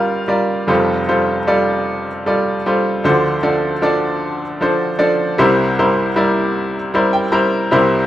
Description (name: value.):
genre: folk.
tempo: 51 BPM (dotted quarters).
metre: 6/8.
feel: straight.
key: unclear.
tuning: A4 = 440 Hz.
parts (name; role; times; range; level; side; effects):
bright upright piano; solo; 0.0-8.1 s; F1 to Bb5; -14 LUFS; equal; none.
room: light reverb.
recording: minimal, uncompressed stereo recording.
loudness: -14 LUFS.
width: side -13 dB against mid.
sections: 0.0-7.7 A section.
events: none.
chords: 0.0 Gm7; 0.7 Fadd9; 3.0 Dm7; 5.4 C7.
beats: | 0.70 1.87 | 3.04 4.22 | 5.39 6.56 | 7.74.